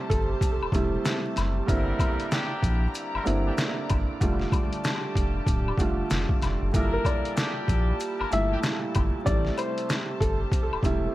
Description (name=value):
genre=hip hop, boom-bap hip-hop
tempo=95 BPM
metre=4/4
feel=swing 60% on 16ths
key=unclear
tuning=A4 = 439 Hz
part: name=dark upright piano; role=accompaniment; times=0.0-11.1 s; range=G2 to A4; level=-30 LUFS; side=right 2 dB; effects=high-pass filter, low-pass filter, analog delay
part: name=warm studio string section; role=sustained chords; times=0.0-11.1 s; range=E4 to Bb5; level=-38 LUFS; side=left 2 dB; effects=high-pass filter, low-pass filter
part: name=clear upright piano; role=melody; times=0.1-0.3, 6.9-10.4 s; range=A4 to E5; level=-32 LUFS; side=left 2 dB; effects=high-pass filter, low-pass filter, analog delay
part: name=soft dub sub bass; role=bass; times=0.1-11.1 s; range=D1 to Bb1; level=-28 LUFS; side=equal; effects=none
part: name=trip hop sampler-style drum kit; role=drums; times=0.1-11.0 s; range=hi-hat, kick drum, snare drum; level=-26 LUFS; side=equal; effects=none
part: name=maracas and woodblock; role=percussion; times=0.1-11.0 s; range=none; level=-37 LUFS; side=left 6 dB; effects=analog delay
part: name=warm trumpet section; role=stabs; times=1.7-8.6 s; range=G3 to Bb4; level=-35 LUFS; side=left 2 dB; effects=high-pass filter, low-pass filter, analog delay
room=small room reverb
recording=echo-heavy mix, vinyl crackle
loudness=-23 LUFS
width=side -16 dB against mid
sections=0.0-11.1 A section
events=none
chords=0.0 Am7; 1.7 C9/G; 4.2 F69; 6.7 Gm69; 9.3 Am7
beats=0.42 1.05 | 1.69 2.32 2.95 3.58 | 4.21 4.84 5.47 6.11 | 6.74 7.37 8.00 8.63 | 9.27 9.90 10.53